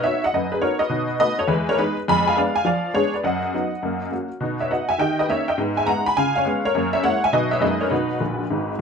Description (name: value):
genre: jazz, stride piano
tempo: 205 BPM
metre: 4/4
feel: swing 65% on 8ths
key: B major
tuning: A4 = 440 Hz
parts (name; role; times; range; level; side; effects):
- honky-tonk upright piano; solo; 0.0-8.8 s; G#1 to Cb6; -19 LUFS; equal; none
room: moderate club reverb, RT60 0.8 s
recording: minimal, uncompressed stereo recording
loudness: -19 LUFS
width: side -6 dB against mid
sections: 0.0-8.8 A section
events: honky-tonk piano fill 8.2-8.8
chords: 0.0 B; 0.9 B7; 1.5 Emaj7; 2.1 Fdim7; 3.2 B/F#; 3.8 F#; 4.4 B; 5.0 D#7; 5.6 G#m; 6.2 C#7; 6.7 F#9; 7.3 B; 7.6 F#69; 7.9 B